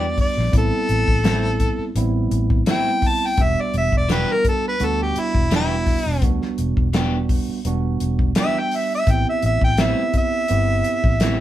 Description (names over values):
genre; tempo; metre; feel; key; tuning
straight-eighth soul blues; 84 BPM; 4/4; swing 53% on 16ths; E minor; A4 = 439 Hz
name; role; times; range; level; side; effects
clear harmonica; melody; 0.0-11.4 s; E4 to A5; -21 LUFS; equal; overdrive
tine electric piano; accompaniment; 0.0-11.4 s; G3 to G4; -25 LUFS; right 5 dB; none
electric guitar at the edge of break-up; stabs; 0.0-11.4 s; A2 to G4; -27 LUFS; left 3 dB; none
vintage muted fingered electric bass; bass; 0.0-11.4 s; E1 to E2; -22 LUFS; equal; none
warm soul drum kit; drums; 0.2-11.4 s; hi-hat, kick drum, snare drum; -21 LUFS; left 1 dB; none
room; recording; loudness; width
moderate small room reverb, RT60 0.5 s; band playing live in one room; -17 LUFS; side -13 dB against mid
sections
0.0-11.4 A section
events
harmonica solo 0.0-11.4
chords
0.0 Em7; 0.5 Am7; 3.4 Em7; 9.1 Am7